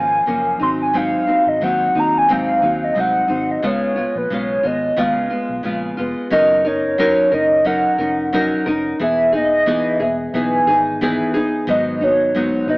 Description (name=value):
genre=indie pop, bedroom pop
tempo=90 BPM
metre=4/4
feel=swing 55% on 16ths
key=F# major from 6.3 s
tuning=A4 = 439 Hz
part: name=hollow clarinet-like synth lead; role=melody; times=0.0-12.8 s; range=Cb5 to C6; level=-17 LUFS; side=equal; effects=analog chorus, tape echo
part: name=nylon-string guitar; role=accompaniment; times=0.0-12.8 s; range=Gb2 to A#4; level=-19 LUFS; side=equal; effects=lush chorus, warbly pitch drift
part: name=vintage muted fingered electric bass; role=bass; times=0.0-12.8 s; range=E1 to Eb2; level=-32 LUFS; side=equal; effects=none
room=moderate spring reverb, RT60 1.5 s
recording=AM radio sound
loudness=-15 LUFS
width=side -26 dB against mid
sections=0.0-6.3 A section; 6.3-12.8 B section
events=none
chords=0.0 Gbmaj7; 0.6 Ab7; 3.6 Db7; 6.3 F#6; 9.0 Emaj7; 11.7 G#m7